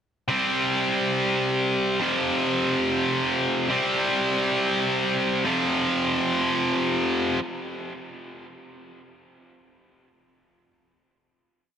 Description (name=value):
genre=rock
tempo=free time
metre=none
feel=none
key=unclear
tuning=A4 = 439 Hz
part: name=tight distorted guitar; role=solo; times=0.3-7.4 s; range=F2 to C4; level=-22 LUFS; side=equal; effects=distortion, tape echo
room=moderate huge ambient reverb, RT60 4.7 s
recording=none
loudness=-21 LUFS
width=side -8 dB against mid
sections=0.3-7.4 A section; 7.4-11.7 final hit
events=slowing down 3.7-7.4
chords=0.3 C5; 2.0 F5; 3.7 C5; 5.5 F5; 7.4 N.C.